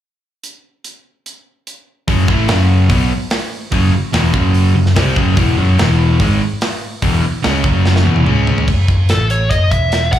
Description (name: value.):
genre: hard rock.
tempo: 146 BPM.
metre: 4/4.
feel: straight.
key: unclear.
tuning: A4 = 440 Hz.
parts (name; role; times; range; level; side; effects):
tight metal drum kit; drums; 0.4-10.2 s; crash cymbal, hi-hat, kick drum, snare drum, toms; -18 LUFS; equal; none.
crunchy overdriven guitar; riff; 2.1-8.7 s; E2 to C#4; -18 LUFS; left 8 dB; slapback echo.
sludgy distorted guitar; riff; 2.1-8.7 s; E2 to C#4; -19 LUFS; right 10 dB; overdrive, slapback echo.
picked electric bass; bass; 2.1-10.2 s; E1 to C#2; -14 LUFS; equal; none.
dark smooth lead guitar; melody; 9.1-10.2 s; A4 to F#5; -16 LUFS; left 1 dB; overdrive, plate reverb, slapback echo.
room: light reverb.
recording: live gig heard through the venue's PA, club reverb.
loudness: -12 LUFS.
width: side -11 dB against mid.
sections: 0.4-2.1 A section; 2.1-8.7 B section; 8.7-10.2 C section.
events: drum fill 7.9-8.7.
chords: 0.4 N.C.; 2.1 F#5; 5.4 E5; 7.7 F#5; 8.1 E5; 8.3 C#5; 8.7 N.C.; 9.1 A; 9.5 D#m/F#; 9.7 N.C..